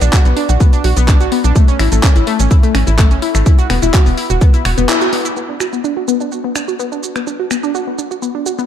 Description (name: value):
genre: progressive house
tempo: 126 BPM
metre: 4/4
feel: straight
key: B minor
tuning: A4 = 440 Hz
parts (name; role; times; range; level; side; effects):
- analog pluck; arpeggios; 0.0-8.6 s; A3 to F#4; -17 LUFS; left 1 dB; chorus, sidechain pumping, tape echo
- tight sequencer bass; bass; 0.0-4.9 s; E1 to B1; -14 LUFS; equal; sidechain pumping
- deep house drum kit; drums; 0.0-8.7 s; finger snaps, handclaps, hi-hat, shaker; -21 LUFS; right 1 dB; none
- electronic kick drum; drums; 0.1-4.5 s; none; -9 LUFS; equal; none
room: light reverb, digital ambience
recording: dark, warm production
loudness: -11 LUFS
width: side -10 dB against mid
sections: 0.0-5.4 A section; 5.4-8.7 B section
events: break 4.9-5.4; band accent 4.9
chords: 0.0 Bm; 1.6 A; 3.5 Esus2; 5.4 Bm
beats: 0.13 0.60 1.08 | 1.56 2.03 2.51 2.98 | 3.46 3.94 4.41 4.89 | 5.37 5.84 6.32 6.79 | 7.27 7.75 8.22